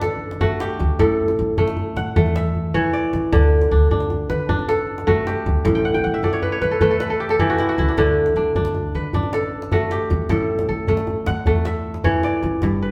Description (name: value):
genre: west african traditional, West African string and xylophone music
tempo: 103 BPM (dotted quarters)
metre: 12/8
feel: straight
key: unclear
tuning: A4 = 441 Hz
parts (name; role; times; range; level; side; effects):
- kora; arpeggios; 0.0-12.9 s; G2 to G5; -22 LUFS; equal; none
- upright bass; bass; 0.0-12.9 s; G1 to D3; -25 LUFS; equal; none
- djembe; percussion; 0.0-12.9 s; none; -28 LUFS; equal; none
room: wet large studio reverb, RT60 1.5 s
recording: band playing live in one room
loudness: -20 LUFS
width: mono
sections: 0.0-12.6 A section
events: drum fill 2.5-3.3; kora fill 5.7-8.0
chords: 0.0 D; 1.0 A; 3.3 D; 5.6 A; 8.0 D; 10.3 A